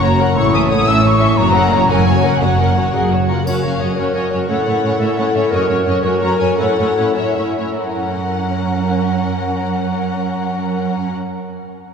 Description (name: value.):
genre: cinematic, heroic adventure film score.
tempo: 93-118 BPM (dotted quarters).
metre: 6/8.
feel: straight.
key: F# major.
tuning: A4 = 439 Hz.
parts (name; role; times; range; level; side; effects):
warm symphonic violin section; melody; 0.0-11.1 s; C#5 to E6; -24 LUFS; left 3 dB; none.
mellow hollow concert flute; second line; 0.0-2.9 s; F#5 to E6; -21 LUFS; equal; none.
warm symphonic violin section; second line; 0.0-11.1 s; A4 to F#5; -23 LUFS; left 2 dB; none.
warm symphonic viola section; accompaniment; 0.0-11.1 s; A3 to A#4; -22 LUFS; right 1 dB; none.
mellow French horn section; sustained chords; 0.0-3.2 s; E3 to C#4; -24 LUFS; left 2 dB; none.
concert harp; arpeggios; 0.0-6.6 s; F#2 to F#5; -23 LUFS; left 7 dB; none.
warm symphonic cello section; bass; 0.0-11.1 s; F#2 to A2; -20 LUFS; right 2 dB; none.
warm symphonic double bass section; bass; 0.0-3.4 s; F#1 to A1; -22 LUFS; right 2 dB; none.
mellow clarinet; second line; 2.9-11.1 s; F#4 to F#5; -21 LUFS; left 1 dB; none.
triangle; percussion; 3.5-4.1 s; none; -38 LUFS; left 1 dB; none.
room: wet cathedral reverb, RT60 4.4 s.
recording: recorded in a church or concert hall.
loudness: -14 LUFS.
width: side -6 dB against mid.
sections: 0.0-3.5 A section; 3.5-7.8 B section; 7.8-10.4 C section.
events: slowing down 5.0-7.8.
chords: 0.4 A; 1.4 F#; 4.5 A; 5.5 F#; 6.6 A; 7.8 F#.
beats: | 0.37 0.88 | 1.39 1.90 | 2.42 2.94 | 3.46 3.98 | 4.49 5.01 | 5.52 6.04 | 6.58 7.16 | 7.79 8.43 | 9.07 9.71.